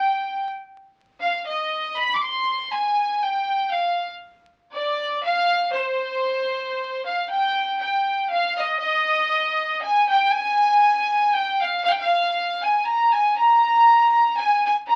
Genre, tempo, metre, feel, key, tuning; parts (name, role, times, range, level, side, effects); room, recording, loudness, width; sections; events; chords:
mexican folk; 118 BPM; 3/4; swing 54% on 8ths; C harmonic minor; A4 = 440 Hz
clear chamber violin section; solo; 0.0-15.0 s; C5 to D6; -21 LUFS; equal
moderate small room reverb, RT60 0.5 s; very old 78 rpm record, vinyl crackle; -21 LUFS; mono
0.0-7.3 A section; 7.3-15.0 B section